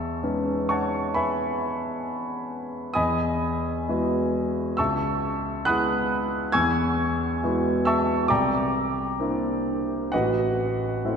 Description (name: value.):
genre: classical, impressionist solo piano.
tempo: 62-70 BPM.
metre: 4/4.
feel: rubato.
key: unclear.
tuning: A4 = 441 Hz.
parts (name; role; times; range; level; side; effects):
warm grand piano; solo; 0.0-11.2 s; A1 to G#6; -23 LUFS; equal; none.
room: wet church reverb, RT60 3.1 s.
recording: dark, warm production.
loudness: -22 LUFS.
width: side -6 dB against mid.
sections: 0.0-11.2 A section.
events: none.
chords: 0.0 C#m9/E; 3.0 Eadd9; 4.8 C#m7; 6.5 Eadd9; 8.3 C9; 10.1 A5.